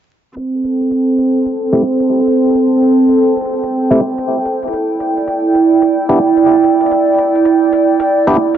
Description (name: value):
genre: glitch hop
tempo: 110 BPM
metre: 4/4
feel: swing 62% on 16ths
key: A minor pentatonic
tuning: A4 = 438 Hz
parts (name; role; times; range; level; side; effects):
- electronic hi-hat; drums; 0.4-8.6 s; none; -36 LUFS; left 3 dB; small room ambience
- warm symphonic string section; texture; 0.4-8.6 s; C4 to G5; -11 LUFS; right 2 dB; none
- overdriven clav; stabs; 1.7-8.4 s; A3 to G4; -17 LUFS; left 1 dB; low-pass filter, dub echo
room: moderate plate reverb, RT60 2.9 s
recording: echo-heavy mix, vinyl crackle, low-pass filter, nothing above 7.8 kHz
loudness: -11 LUFS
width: side -10 dB against mid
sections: 0.4-8.6 A section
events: filter sweep 0.4-8.6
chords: 0.4 Am7; 4.7 Em7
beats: | 0.36 0.91 1.45 2.00 | 2.54 3.09 3.63 4.18 | 4.73 5.27 5.82 6.36 | 6.91 7.45 8.00 8.54